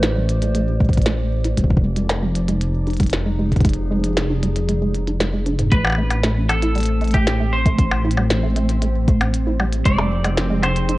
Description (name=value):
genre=IDM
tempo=116 BPM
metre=4/4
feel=straight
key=unclear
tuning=A4 = 440 Hz
part: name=warbly tape-like pad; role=sustained chords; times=0.0-11.0 s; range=F3 to C5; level=-27 LUFS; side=equal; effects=chorus, built-in reverb, vintage 12-bit sampler grit
part: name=deep acid bass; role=arpeggios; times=0.0-11.0 s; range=Ab2 to E4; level=-25 LUFS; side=right 1 dB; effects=lush chorus, cassette tape, digital delay
part: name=dark detuned saw bass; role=bass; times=0.0-11.0 s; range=F1 to A1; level=-20 LUFS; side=equal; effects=none
part: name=glitchy drum kit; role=drums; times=0.0-11.0 s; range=hi-hat, percussion blips, snare drum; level=-24 LUFS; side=equal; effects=none
part: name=bubbling stepped-filter texture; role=texture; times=0.0-11.0 s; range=C4 to D5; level=-35 LUFS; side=right 3 dB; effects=chorus, built-in reverb
part: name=electronic kick drum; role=drums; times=0.8-10.0 s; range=none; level=-17 LUFS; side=equal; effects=none
part: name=semi-hollow electric guitar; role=melody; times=5.7-11.0 s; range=G4 to D5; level=-25 LUFS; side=equal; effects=lush chorus, tape echo
room=light reverb, digital ambience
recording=worn, warbling old tape, cassette tape, warbly pitch drift, nothing above 10.8 kHz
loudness=-16 LUFS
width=side -18 dB against mid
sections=0.0-11.0 A section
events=filter sweep on acid bass 0.0-11.0; kick drops out 4.7-5.7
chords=0.0 Am9; 1.6 Fm9; 5.7 Am7; 9.9 Fm9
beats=0.03 0.55 1.06 | 1.58 2.10 2.61 3.13 | 3.65 4.17 4.68 5.20 | 5.72 6.24 6.75 7.27 | 7.79 8.30 8.82 9.34 | 9.86 10.37 10.89